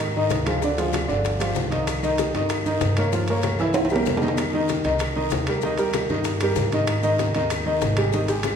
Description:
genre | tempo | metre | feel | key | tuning
latin, salsa | 192 BPM | 4/4 | straight | Ab major | A4 = 440 Hz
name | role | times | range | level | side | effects
clear baby grand piano | accompaniment | 0.0-8.5 s | D3 to F5 | -23 LUFS | equal | none
upright bass | bass | 0.0-8.5 s | G1 to Ab2 | -27 LUFS | equal | none
claves | percussion | 0.0-8.6 s | none | -38 LUFS | left 4 dB | none
congas | percussion | 0.0-8.6 s | none | -33 LUFS | left 3 dB | none
guiro | percussion | 0.0-8.6 s | none | -38 LUFS | left 5 dB | none
timbales | percussion | 0.0-8.6 s | none | -31 LUFS | right 3 dB | none
bongos | percussion | 0.3-8.6 s | none | -31 LUFS | left 6 dB | none
maracas | percussion | 0.3-8.6 s | none | -39 LUFS | left 7 dB | none
room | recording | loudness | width
wet recital hall reverb, RT60 1.9 s | recorded in a church or concert hall | -20 LUFS | side -7 dB against mid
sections
0.0-8.6 A section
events
drum fill 3.8-4.4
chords
0.0 Ab5; 0.6 Ddim; 1.3 G5; 1.9 Cm7; 3.1 Gm7b5; 3.8 C7; 4.4 F5; 5.6 Eb; 6.9 Ab5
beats
0.00 0.31 | 0.62 0.94 1.25 1.56 | 1.88 2.19 2.50 2.82 | 3.13 3.44 3.75 4.07 | 4.38 4.69 5.01 5.32 | 5.63 5.94 6.25 6.57 | 6.88 7.19 7.50 7.81 | 8.12 8.44

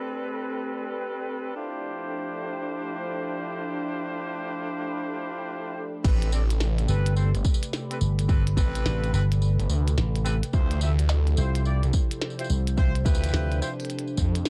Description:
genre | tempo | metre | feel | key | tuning
glitch hop | 107 BPM | 4/4 | swing 64% on 16ths | A minor | A4 = 440 Hz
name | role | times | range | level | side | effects
warbly tape-like pad | sustained chords | 0.0-14.5 s | C3 to B5 | -39 LUFS | equal | chorus, built-in reverb, sidechain pumping
clear horn section | stabs | 0.0-13.7 s | C4 to E5 | -35 LUFS | equal | sidechain pumping, low-pass filter, digital delay
granular cloud pad | texture | 0.0-14.5 s | A4 to B5 | -42 LUFS | equal | built-in reverb, sidechain pumping
phased detuned saw bass | bass | 6.0-14.4 s | G1 to F2 | -26 LUFS | equal | phaser, tube saturation
electronic kick drum | drums | 6.0-14.3 s | none | -25 LUFS | equal | overdrive
glitchy drum kit | drums | 6.0-14.5 s | crash cymbal, hi-hat, rim click, snare drum, tambourine | -37 LUFS | equal | none
slap bass with an envelope filter | bass | 6.9-13.6 s | G1 to D2 | -26 LUFS | equal | none
room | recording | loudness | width
little or no reverb | dark, warm production | -26 LUFS | mono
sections
0.0-6.0 A section; 6.0-14.5 B section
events
drop 6.0-14.5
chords
0.0 Am9; 1.6 Dm11; 6.0 Am9; 10.5 Dm11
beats
0.44 1.00 | 1.56 2.12 2.68 3.24 | 3.80 4.36 4.92 5.49 | 6.05 6.61 7.17 7.73 | 8.29 8.85 9.41 9.97 | 10.53 11.09 11.65 12.21 | 12.78 13.34 13.90 14.46

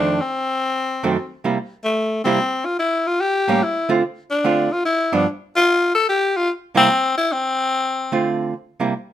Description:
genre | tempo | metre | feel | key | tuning
jazz | 147 BPM | 3/4 | swing 65% on 8ths | C mixolydian | A4 = 440 Hz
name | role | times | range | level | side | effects
growling tenor saxophone | melody | 0.0-8.5 s | A3 to A4 | -18 LUFS | left 2 dB | none
archtop guitar, miked and amplified | accompaniment | 0.0-8.9 s | F2 to F4 | -19 LUFS | right 4 dB | none
room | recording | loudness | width
light reverb | minimal, uncompressed stereo recording | -17 LUFS | side -11 dB against mid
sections
0.0-8.9 A section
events
none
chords
0.4 F#dim7; 1.6 C7; 2.8 A7b9; 4.0 Dm7; 5.3 N.C.; 6.5 C7; 7.7 Dm7; 8.5 C7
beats
| 0.35 0.76 1.17 | 1.58 1.99 2.40 | 2.80 3.21 3.62 | 4.03 4.44 4.85 | 5.26 5.67 6.08 | 6.48 6.89 7.30 | 7.71 8.12 8.53

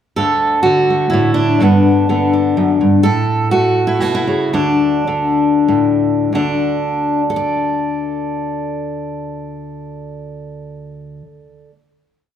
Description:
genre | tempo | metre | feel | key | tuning
folk, solo fingerstyle acoustic guitar | 90-127 BPM | 3/4 | rubato | D major | A4 = 440 Hz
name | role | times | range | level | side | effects
fingerpicked steel-string acoustic guitar | solo | 0.2-11.7 s | D2 to D5 | -14 LUFS | equal | none
room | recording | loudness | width
wet large studio reverb, RT60 1.1 s | heard from further back in the room | -13 LUFS | side -9 dB against mid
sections
0.2-6.3 A section; 6.3-10.2 final chord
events
slowing down 3.0-6.3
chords
0.2 Dadd9; 1.6 G; 3.0 A; 4.5 D5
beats
| 0.17 0.66 1.14 | 1.61 2.09 2.57 | 3.04 3.51 4.01 | 4.53 5.07 5.67 | 6.32 6.97 7.62 | 8.25 8.90 9.55

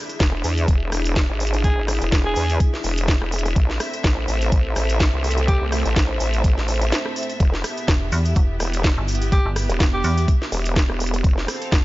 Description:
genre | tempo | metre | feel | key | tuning
bass house | 125 BPM | 4/4 | swing 56% on 16ths | unclear | A4 = 440 Hz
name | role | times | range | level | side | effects
dark analog pad | sustained chords | 0.0-11.8 s | A3 to E5 | -32 LUFS | equal | chorus, phaser, sidechain pumping
muted studio string section | texture | 0.0-11.8 s | B3 to F5 | -31 LUFS | right 1 dB | sidechain pumping
garage drum kit | drums | 0.1-11.8 s | hi-hat, rim click, snare drum | -26 LUFS | equal | none
tube shaker | percussion | 0.1-11.8 s | none | -37 LUFS | left 4 dB | none
vowel-sweep wobble bass | bass | 0.2-11.5 s | E1 to E2 | -22 LUFS | equal | chorus, overdrive, sidechain pumping
electronic kick drum | drums | 0.2-11.8 s | none | -18 LUFS | equal | none
clear alto saxophone | melody | 1.6-5.7, 9.3-10.3 s | G4 to G#4 | -27 LUFS | equal | tape echo
metallic FM bass | bass | 7.9-11.8 s | E1 to E2 | -22 LUFS | equal | tube saturation, sidechain pumping
room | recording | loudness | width
little or no reverb | nothing above 7.6 kHz | -18 LUFS | side -18 dB against mid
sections
0.0-11.8 A section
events
break 6.9-7.4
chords
0.0 E7; 3.6 Am; 7.4 Em; 11.2 F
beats
0.20 0.68 1.16 | 1.64 2.12 2.60 3.08 | 3.56 4.04 4.52 5.00 | 5.48 5.96 6.44 6.92 | 7.40 7.88 8.36 8.84 | 9.32 9.80 10.28 10.76 | 11.24 11.72

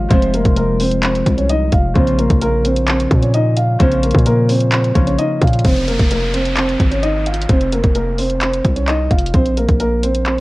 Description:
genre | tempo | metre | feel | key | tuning
hip hop, trap | 130 BPM | 4/4 | half-time | F minor | A4 = 440 Hz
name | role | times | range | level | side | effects
dark grand piano | melody | 0.0-10.4 s | Bb3 to F5 | -18 LUFS | right 1 dB | low-pass filter
Celtic harp | accompaniment | 0.0-8.2 s | C3 to F4 | -22 LUFS | left 3 dB | low-pass filter
hard-hitting 808-style bass | bass | 0.0-10.4 s | F1 to Bb2 | -18 LUFS | equal | none
trap drum kit | drums | 0.1-10.4 s | handclaps, hi-hat, kick drum | -16 LUFS | equal | none
downlifter | sound effects | 5.6-9.3 s | none | -28 LUFS | equal | none
room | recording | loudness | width
little or no reverb | worn, warbling old tape, cassette tape, warbly pitch drift | -13 LUFS | side -20 dB against mid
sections
0.0-5.6 A section; 5.6-10.4 B section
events
none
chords
0.0 Fm; 2.0 Bbm; 5.6 Fm; 9.3 N.C.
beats
| 0.11 0.57 1.03 1.49 | 1.95 2.42 2.88 3.34 | 3.80 4.26 4.72 5.18 | 5.65 6.11 6.57 7.03 | 7.49 7.95 8.42 8.88 | 9.34 9.80 10.26

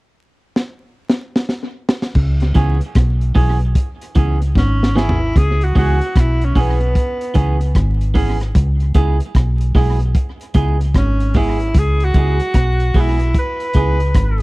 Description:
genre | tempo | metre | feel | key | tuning
roots reggae | 75 BPM | 4/4 | swing 63% on 16ths | C# minor | A4 = 440 Hz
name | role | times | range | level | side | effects
crunchy breakbeat drum kit | drums | 0.6-14.4 s | crash cymbal, hi-hat, kick drum, rim click, snare drum, toms | -17 LUFS | equal | tape echo
deep dub fingered electric bass | bass | 2.2-14.4 s | G#1 to C#2 | -15 LUFS | equal | none
clean electric guitar | accompaniment | 2.5-14.1 s | E3 to G#4 | -23 LUFS | right 3 dB | tape echo
breathy tenor saxophone | melody | 4.6-14.4 s | B3 to B4 | -21 LUFS | equal | tape echo
room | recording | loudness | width
little or no reverb | dry, close 1970s-style studio recording, vinyl crackle | -14 LUFS | side -22 dB against mid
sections
0.0-2.2 A section; 2.2-5.4 B section; 5.4-14.4 C section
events
drum fill 0.6-2.2, 4.6-5.4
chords
0.0 N.C.; 2.2 C#m7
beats
0.55 1.35 | 2.15 2.96 3.75 4.55 | 5.36 6.16 6.95 7.75 | 8.55 9.35 10.15 10.95 | 11.75 12.55 13.35 14.15

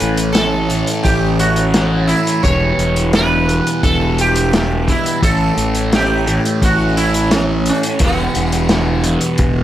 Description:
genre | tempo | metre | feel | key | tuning
psychedelic rock | 86 BPM | 4/4 | straight | A mixolydian | A4 = 438 Hz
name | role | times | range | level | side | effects
sitar | melody | 0.0-9.6 s | B3 to C#5 | -19 LUFS | right 2 dB | analog delay
mellow tonewheel organ | sustained chords | 0.0-9.6 s | E3 to C#5 | -26 LUFS | right 3 dB | slow rotary speaker
fuzz guitar | riff | 0.0-9.6 s | E2 to A3 | -19 LUFS | left 1 dB | distortion, phaser
fuzz fingered electric bass | bass | 0.0-9.6 s | E1 to A1 | -18 LUFS | equal | overdrive
vintage drum kit | drums | 0.0-9.6 s | hi-hat, kick drum, snare drum | -18 LUFS | equal | none
room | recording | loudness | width
little or no reverb | none | -12 LUFS | side -12 dB against mid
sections
0.0-9.6 A section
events
none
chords
0.0 A; 2.5 Em; 5.2 A; 8.0 Em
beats
0.37 1.06 1.76 | 2.45 3.15 3.84 4.54 | 5.23 5.93 6.62 7.32 | 8.01 8.71 9.40

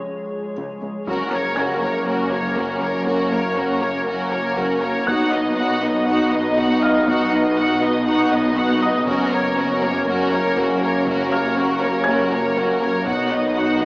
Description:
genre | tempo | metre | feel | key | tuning
cinematic, hybrid orchestral and electronic film score | 120 BPM | 4/4 | straight | unclear | A4 = 440 Hz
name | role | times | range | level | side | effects
glassy FM pad | sustained chords | 0.0-13.8 s | F3 to D#5 | -27 LUFS | equal | ensemble chorus, built-in reverb
felt-muted upright piano | texture | 0.0-13.8 s | F5 to Bb6 | -28 LUFS | equal | none
soft round pluck | arpeggios | 0.6-13.8 s | Db3 to B4 | -30 LUFS | equal | none
warm symphonic cello section | bass | 0.6-13.8 s | Db2 to B2 | -28 LUFS | equal | none
rich symphonic violin section | melody | 1.1-13.8 s | Bb4 to F#5 | -23 LUFS | equal | none
warm symphonic violin section | second line | 1.1-13.8 s | D#4 to Bb4 | -26 LUFS | equal | none
rich symphonic viola section | accompaniment | 1.1-13.8 s | Bb3 to D#4 | -26 LUFS | equal | none
mellow French horn section | sustained chords | 1.1-13.8 s | Bb3 to D#4 | -23 LUFS | equal | none
warm symphonic double bass section | bass | 1.1-13.8 s | Gb1 to B1 | -35 LUFS | equal | none
wide detuned saw bass | bass | 1.1-13.8 s | Gb1 to B1 | -33 LUFS | equal | none
taiko ensemble | drums | 1.1-13.5 s | none | -36 LUFS | equal | none
room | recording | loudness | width
wet recital hall reverb, RT60 1.6 s | small speaker sound | -17 LUFS | side -25 dB against mid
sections
0.0-1.1 A section; 1.1-13.8 B section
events
none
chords
0.0 Db; 1.1 Gb; 5.1 B; 9.1 Gb; 13.1 B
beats
0.07 0.57 | 1.07 1.57 2.07 2.57 | 3.07 3.57 4.07 4.57 | 5.07 5.57 6.07 6.57 | 7.07 7.57 8.07 8.57 | 9.07 9.57 10.07 10.57 | 11.07 11.57 12.07 12.57 | 13.07 13.57

